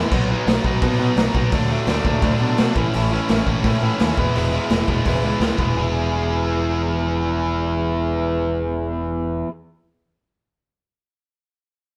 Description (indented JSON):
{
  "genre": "punk rock",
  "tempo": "170 BPM",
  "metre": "4/4",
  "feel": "straight",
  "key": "E major",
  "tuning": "A4 = 443 Hz",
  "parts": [
    { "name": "distorted electric guitar", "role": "riff", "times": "0.0-9.5 s", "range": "A2 to G#4", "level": "-24 LUFS", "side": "equal", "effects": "overdrive" },
    { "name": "growling picked electric bass", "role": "bass", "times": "0.0-9.4 s", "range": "E1 to B2", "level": "-26 LUFS", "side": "equal", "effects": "overdrive" },
    { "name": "raw garage drum kit", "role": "drums", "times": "0.1-5.7 s", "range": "crash cymbal, hi-hat, kick drum, snare drum", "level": "-23 LUFS", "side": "equal", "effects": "none" }
  ],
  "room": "light reverb",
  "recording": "band playing live in one room",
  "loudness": "-20 LUFS",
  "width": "mono",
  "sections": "0.1-5.8 A section; 5.8-8.6 B section",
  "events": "none",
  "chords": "0.1 B; 1.5 D; 2.8 A; 4.2 E"
}